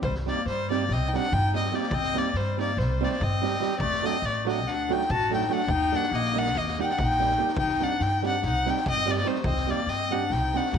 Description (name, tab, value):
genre	balkan folk, Balkan wedding band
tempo	287 BPM (eighths)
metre	9/8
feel	straight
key	C dorian sharp4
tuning	A4 = 439 Hz
part	warm violin	melody	0.0-10.8 s	C5 to A5	-27 LUFS	left 1 dB	none
part	bright clarinet	second line	0.0-10.8 s	G3 to F#4	-31 LUFS	left 10 dB	none
part	upright bass	bass	0.0-10.8 s	A1 to G2	-30 LUFS	equal	none
part	street-band drum kit	percussion	0.0-10.8 s	kick drum, snare drum	-35 LUFS	equal	none
part	flamenco guitar	accompaniment	0.3-10.7 s	F#3 to G4	-31 LUFS	right 10 dB	none
room	moderate echo chamber reverb, RT60 2.0 s, studio reverb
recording	1960s-style stereo with parts hard left and right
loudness	-23 LUFS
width	side -7 dB against mid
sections	0.0-10.8 A section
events	none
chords	0.0 Cm; 3.8 D; 5.7 Eb; 7.6 Cm